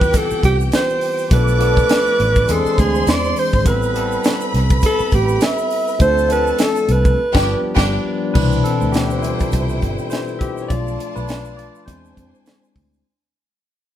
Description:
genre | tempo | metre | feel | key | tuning
lush 1970s-style soul | 102 BPM | 4/4 | swing 58% on 16ths | C major | A4 = 435 Hz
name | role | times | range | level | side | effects
clear alto saxophone | melody | 0.0-7.8 s | G4 to E5 | -18 LUFS | right 2 dB | none
rich studio violin section | second line | 0.0-13.0 s | D4 to D6 | -26 LUFS | equal | none
barky tine electric piano | accompaniment | 0.0-13.1 s | B2 to E5 | -22 LUFS | left 2 dB | phaser
vintage muted fingered electric bass | bass | 0.0-13.0 s | G1 to F2 | -19 LUFS | equal | none
tight funk drum kit | drums | 0.0-12.9 s | crash cymbal, hi-hat, kick drum, snare drum | -19 LUFS | equal | none
egg shaker | percussion | 0.0-13.0 s | none | -40 LUFS | right 6 dB | none
room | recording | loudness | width
moderate stone room reverb, RT60 1.0 s | band playing live in one room | -14 LUFS | side -11 dB against mid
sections
0.0-8.4 A section; 8.4-13.1 B section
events
band accent 7.2-8.4; fade-out 8.4-13.1; tine electric piano solo 8.4-13.1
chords
0.0 Cmaj7; 1.3 Bm7b5; 2.5 E7b13; 3.7 Am9; 6.0 Dm7; 7.2 G7; 8.4 Cmaj7; 10.7 Bm7b5; 11.9 E7b13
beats
0.14 0.73 | 1.31 1.90 2.48 3.07 | 3.66 4.24 4.83 5.42 | 6.00 6.59 7.18 7.76 | 8.35 8.94 9.53 10.11 | 10.70 11.29 11.88 12.47

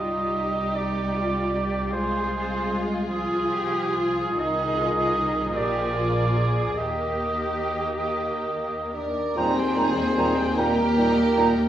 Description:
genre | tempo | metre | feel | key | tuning
classical, slow romantic movement for symphony orchestra | 45-53 BPM (dotted quarters) | 6/8 | rubato | Eb major from 4.4 s | A4 = 440 Hz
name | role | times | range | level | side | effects
rich symphonic violin section | melody | 0.0-11.7 s | F4 to Bb5 | -35 LUFS | left 2 dB | none
clear oboe | second line | 0.0-11.5 s | Ab4 to G5 | -27 LUFS | right 2 dB | none
rich chamber violin section | second line | 0.0-11.7 s | Bb3 to Bb4 | -32 LUFS | left 1 dB | none
rich chamber viola section | accompaniment | 0.0-11.7 s | Eb3 to G4 | -32 LUFS | right 1 dB | none
dark chamber double bass section | bass | 0.0-11.6 s | Bb1 to Eb2 | -30 LUFS | right 1 dB | none
warm chamber cello section | bass | 0.0-11.6 s | Eb2 to Ab4 | -31 LUFS | equal | none
dark French horn section | sustained chords | 8.9-11.7 s | Bb3 to D4 | -24 LUFS | left 1 dB | none
dark trumpet section | stabs | 8.9-11.7 s | Bb4 to D5 | -26 LUFS | right 3 dB | none
concert flute | second line | 9.4-11.5 s | Bb5 | -32 LUFS | right 2 dB | none
mellow clarinet | second line | 9.4-11.5 s | Eb4 | -33 LUFS | right 2 dB | none
mellow bassoon | accompaniment | 9.4-11.5 s | Bb2 | -29 LUFS | right 1 dB | none
room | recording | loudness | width
wet recital hall reverb, RT60 1.5 s | worn, warbling old tape, cassette tape, warbly pitch drift, small room ambience | -22 LUFS | side -11 dB against mid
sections
0.0-9.4 A section; 9.4-11.7 B section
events
none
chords
0.0 Cm; 1.9 Fmadd9/C; 4.4 Ab/C; 5.6 Bb7; 6.8 Eb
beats
0.76 | 1.95 3.11 | 4.37 5.55 | 6.78 8.08 | 9.37 10.59

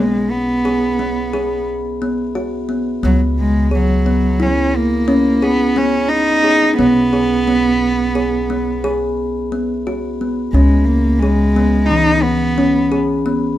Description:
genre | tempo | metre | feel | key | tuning
contemporary instrumental, contemporary | 176 BPM (eighths) | 11/8 | straight | C# dorian | A4 = 439 Hz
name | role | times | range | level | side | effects
warm cello | melody | 0.0-12.9 s | F#3 to D#4 | -16 LUFS | right 1 dB | none
kalimba | arpeggios | 0.0-13.6 s | E3 to G#4 | -17 LUFS | left 1 dB | none
upright bass | bass | 0.0-13.6 s | B1 to C#2 | -20 LUFS | equal | none
room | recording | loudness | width
little or no reverb | close, detailed microphones | -13 LUFS | side -13 dB against mid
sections
0.0-13.6 A section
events
none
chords
0.0 B5; 3.0 C#m11; 6.8 B5; 10.5 C#m7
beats
0.31 0.65 0.99 1.33 1.67 2.01 2.35 2.69 | 3.04 3.38 3.72 4.06 4.40 4.74 5.09 5.43 5.77 6.11 6.45 | 6.79 7.13 7.47 7.82 8.16 8.50 8.84 9.18 9.52 9.86 10.20 | 10.54 10.88 11.22 11.56 11.90 12.24 12.58 12.92 13.26

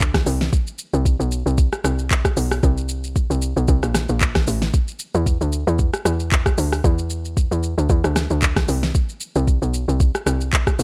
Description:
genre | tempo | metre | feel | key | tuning
amapiano | 114 BPM | 4/4 | swing 55% on 16ths | unclear | A4 = 441 Hz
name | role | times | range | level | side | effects
tight log drum bass | bass | 0.0-10.8 s | A1 to E2 | -23 LUFS | equal | none
smooth R&B drum kit | drums | 0.0-10.8 s | handclaps, hi-hat, kick drum, rim click, shaker, snare drum | -22 LUFS | equal | none
room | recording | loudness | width
little or no reverb | none | -20 LUFS | mono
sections
0.0-10.8 A section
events
none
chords
none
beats
0.00 | 0.53 1.05 1.58 2.10 | 2.63 3.16 3.68 4.21 | 4.74 5.26 5.79 6.32 | 6.84 7.37 7.89 8.42 | 8.95 9.47 10.00 10.53

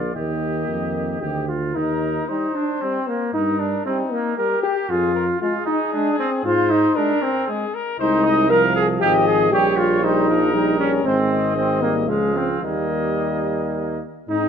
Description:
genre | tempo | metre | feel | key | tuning
classical, brass quintet | 115 BPM | 3/4 | rubato | Eb major | A4 = 444 Hz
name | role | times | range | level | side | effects
warm trumpet | melody | 0.0-14.5 s | Eb4 to F5 | -26 LUFS | left 8 dB | none
clear trumpet | second line | 0.0-14.5 s | Ab3 to Bb4 | -25 LUFS | right 5 dB | none
mellow French horn | accompaniment | 0.0-14.5 s | Ab3 to Bb4 | -21 LUFS | left 2 dB | none
warm tuba | bass | 0.0-14.5 s | Ab1 to Ab2 | -25 LUFS | right 4 dB | none
clear trombone | accompaniment | 0.2-14.5 s | Eb3 to C4 | -28 LUFS | right 3 dB | none
room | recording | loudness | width
moderate recital hall reverb, RT60 1.5 s | none | -18 LUFS | side -7 dB against mid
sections
0.0-1.8 A section; 1.8-14.3 A section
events
none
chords
0.1 Eb; 3.3 Eb/G; 4.9 Fm; 6.5 Ab69; 8.0 Ab/C; 9.5 Eb7/Bb; 11.1 Ab; 12.1 Db; 12.6 Eb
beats
| 0.15 0.68 1.22 | 1.76 2.29 2.81 | 3.34 3.86 4.38 | 4.90 5.42 5.94 | 6.46 6.97 7.49 | 8.00 8.51 9.01 | 9.52 10.03 10.54 | 11.05 11.56 12.09 | 12.64 13.19 13.75 | 14.29

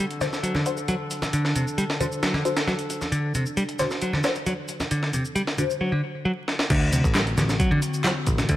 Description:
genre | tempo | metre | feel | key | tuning
breakbeat, breaks | 134 BPM | 4/4 | straight | unclear | A4 = 440 Hz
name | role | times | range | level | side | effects
warbly tape-like pad | sustained chords | 0.0-8.6 s | D3 to A4 | -32 LUFS | left 1 dB | chorus, built-in reverb, vintage 12-bit sampler grit, sidechain pumping
modern bright picked electric bass | riff | 0.0-8.6 s | C3 to G3 | -25 LUFS | equal | tube saturation, ping-pong delay
breakbeat sampler-style drum kit | drums | 0.1-8.6 s | crash cymbal, hi-hat, kick drum, snare drum | -26 LUFS | equal | high-pass filter on hats, high-pass filter on snare, high-pass filter on cymbals, high-pass filter on kick
filtered dub chord stab | stabs | 0.2-5.8 s | D4 to C5 | -30 LUFS | left 3 dB | phaser, analog chorus, ping-pong delay
electronic shaker and handclaps | drums | 0.2-8.6 s | none | -35 LUFS | equal | overdrive
congas and bongos | percussion | 0.2-8.5 s | none | -36 LUFS | left 1 dB | none
picked electric bass | bass | 6.7-8.6 s | A1 to D2 | -25 LUFS | equal | none
room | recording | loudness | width
light reverb | vinyl crackle | -22 LUFS | side -14 dB against mid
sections
0.0-6.7 A section; 6.7-8.6 B section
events
drum fill 6.5; drop 6.7-8.6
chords
0.0 D7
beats
0.43 0.88 | 1.33 1.78 2.23 2.67 | 3.12 3.57 4.02 4.46 | 4.91 5.36 5.81 6.26 | 6.70 7.15 7.60 8.05 | 8.49

